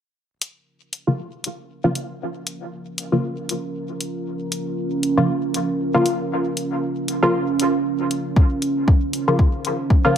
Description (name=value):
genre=dub techno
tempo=117 BPM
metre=4/4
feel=swing 56% on 16ths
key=Bb minor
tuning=A4 = 440 Hz
part: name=deep dark ambient pad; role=sustained chords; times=2.5-10.2 s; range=Db4 to C5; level=-24 LUFS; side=right 3 dB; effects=chorus, built-in reverb, sidechain pumping
part: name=electronic hi-hat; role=drums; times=0.4-9.8 s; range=none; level=-26 LUFS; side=left 2 dB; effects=overdrive
part: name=filtered dub chord stab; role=stabs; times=1.1-10.2 s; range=Db3 to F4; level=-21 LUFS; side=left 1 dB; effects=chorus, phaser, cassette tape, sidechain pumping, dub echo
part: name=electronic kick drum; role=drums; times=8.4-10.0 s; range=none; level=-15 LUFS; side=equal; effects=overdrive
room=light reverb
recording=none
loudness=-19 LUFS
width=side -9 dB against mid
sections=0.2-10.2 A section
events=filter sweep on synth stab 0.2-10.2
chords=0.2 Bbm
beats=| 0.16 0.67 1.19 1.70 | 2.21 2.72 3.24 3.75 | 4.26 4.78 5.29 5.80 | 6.31 6.83 7.34 7.85 | 8.36 8.88 9.39 9.90